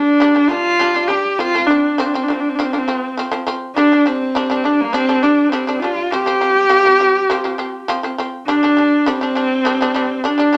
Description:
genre	mongolian traditional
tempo	102 BPM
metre	4/4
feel	straight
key	unclear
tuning	A4 = 439 Hz
part	clear horsehead fiddle	melody	0.0-10.6 s	Bb3 to G4	-16 LUFS	equal	none
part	shamisen	arpeggios	0.0-10.6 s	F3 to D4	-24 LUFS	equal	none
room	wet studio reverb, RT60 0.5 s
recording	none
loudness	-16 LUFS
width	mono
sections	0.0-8.5 A section; 8.5-10.6 A section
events	none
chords	0.0 G5; 1.4 F5; 3.8 G5; 6.1 F5; 8.5 G5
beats	0.21 0.81 | 1.40 1.99 2.58 3.17 | 3.77 4.36 4.95 5.54 | 6.13 6.71 7.30 7.89 | 8.48 9.07 9.66 10.25

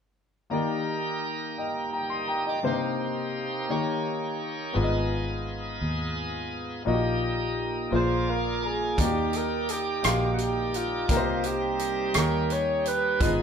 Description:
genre	slow gospel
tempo	57 BPM (dotted quarters)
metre	6/8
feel	straight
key	Eb major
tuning	A4 = 442 Hz
part	clear grand piano	accompaniment	0.5-13.4 s	Ab2 to C6	-29 LUFS	left 3 dB	none
part	bright tonewheel organ	sustained chords	0.5-13.4 s	F3 to G5	-32 LUFS	right 2 dB	slow rotary speaker, overdrive
part	fingered electric bass	bass	4.8-13.4 s	Ab1 to Eb2	-31 LUFS	right 1 dB	none
part	warm alto saxophone	melody	8.0-13.3 s	F4 to Db5	-28 LUFS	right 3 dB	none
part	natural country drum kit	drums	9.0-13.4 s	hi-hat, kick drum, rim click	-28 LUFS	right 1 dB	none
room	wet studio reverb, RT60 0.8 s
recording	band playing live in one room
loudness	-25 LUFS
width	side -7 dB against mid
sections	0.5-9.0 A section; 9.0-13.4 B section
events	grand piano fill 7.9-9.0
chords	0.5 Ebmaj7; 2.6 Cm7; 3.7 Eb7; 4.8 Abm6; 6.9 Eb/Bb; 7.9 Bb7; 9.0 Ebmaj7; 11.1 Cm7; 12.2 Eb7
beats	| 0.52 1.58 | 2.63 3.69 | 4.75 5.81 | 6.87 7.93 | 8.98 10.04 | 11.10 12.15 | 13.21

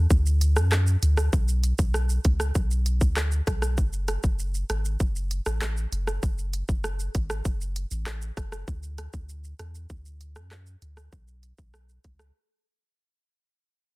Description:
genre	dancehall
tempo	98 BPM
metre	4/4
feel	straight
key	unclear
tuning	A4 = 439 Hz
part	punchy sub bass	bass	0.0-12.3 s	F#1 to F#2	-26 LUFS	equal	none
part	island pop drum kit	drums	0.1-12.3 s	handclaps, hi-hat, kick drum, rim click, shaker	-26 LUFS	equal	none
room	digital ambience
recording	dense, heavily limited modern master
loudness	-23 LUFS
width	side -23 dB against mid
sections	0.0-13.6 A section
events	fade-out 0.0-13.6; break 12.4-13.6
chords	none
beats	0.11 0.72 | 1.33 1.94 2.56 3.17 | 3.78 4.39 5.00 5.62 | 6.23 6.84 7.45 8.06 | 8.68 9.29 9.90 10.51 | 11.13 11.74

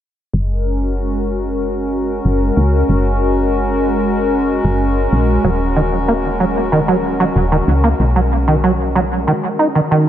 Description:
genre	IDM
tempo	94 BPM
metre	4/4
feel	straight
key	F# major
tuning	A4 = 440 Hz
part	hollow soft pad	sustained chords	0.3-10.1 s	G#3 to A#4	-18 LUFS	left 1 dB	chorus
part	woody FM bass	bass	0.3-9.3 s	D#1 to C#2	-18 LUFS	equal	none
part	deep acid bass	arpeggios	5.4-10.1 s	D#3 to D#4	-15 LUFS	right 2 dB	wide subtle chorus, tape echo
room	moderate echo chamber reverb, RT60 2.2 s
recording	echo-heavy mix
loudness	-13 LUFS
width	side -11 dB against mid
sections	0.3-10.1 A section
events	none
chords	0.3 F#; 5.4 D#m7; 8.0 Bmaj7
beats	| 0.34 0.97 1.61 2.25 | 2.89 3.53 4.17 4.80 | 5.44 6.08 6.72 7.36 | 8.00 8.63 9.27 9.91

